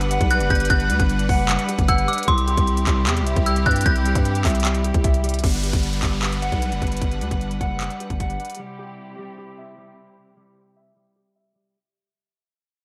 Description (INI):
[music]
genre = hip hop, trap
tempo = 152 BPM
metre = 4/4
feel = half-time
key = G major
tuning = A4 = 440 Hz
[part]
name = warm studio string section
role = sustained chords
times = 0.0-11.7 s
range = C3 to F#5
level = -32 LUFS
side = equal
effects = low-pass filter
[part]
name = mellow electric guitar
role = arpeggios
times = 0.0-11.8 s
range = G3 to F#5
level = -31 LUFS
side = equal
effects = low-pass filter, tape echo
[part]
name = growling 808-style bass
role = bass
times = 0.0-8.4 s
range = F#1 to G2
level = -25 LUFS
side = equal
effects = none
[part]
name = trap drum kit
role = drums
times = 0.0-8.6 s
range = crash cymbal, handclaps, hi-hat, kick drum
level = -25 LUFS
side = equal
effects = none
[part]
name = dark detuned synth bell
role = second line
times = 0.3-4.2 s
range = C6 to G6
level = -26 LUFS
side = equal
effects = chorus, tape echo
[part]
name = downlifter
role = sound effects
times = 5.4-8.6 s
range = none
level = -36 LUFS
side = equal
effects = none
[sound]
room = little or no reverb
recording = dry, gritty hardware recording, transformer saturation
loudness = -21 LUFS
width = mono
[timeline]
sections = 0.0-5.4 A section; 5.4-11.8 B section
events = fade-out 5.4-11.8; filter sweep 5.4-11.8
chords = 0.0 Gmaj7; 2.3 C; 5.4 Gmaj7; 8.6 C